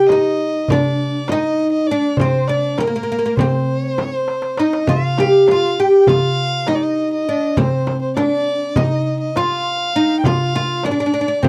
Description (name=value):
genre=Turkish makam ensemble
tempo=201 BPM (eighths)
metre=9/8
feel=straight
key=C makam ussak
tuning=A4 = 440 Hz
part: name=oud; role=melody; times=0.0-11.5 s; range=Bb3 to G4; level=-19 LUFS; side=equal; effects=none
part: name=dark violin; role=second line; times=0.0-11.5 s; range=Bb4 to G5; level=-24 LUFS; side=equal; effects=none
part: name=darbuka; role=percussion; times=0.1-11.5 s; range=none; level=-24 LUFS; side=equal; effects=none
part: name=frame drum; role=percussion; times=0.1-11.5 s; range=none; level=-24 LUFS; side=equal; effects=none
room=little or no reverb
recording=dry, close 1970s-style studio recording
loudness=-17 LUFS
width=mono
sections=0.0-11.5 A section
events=drum fill 4.3-4.9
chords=none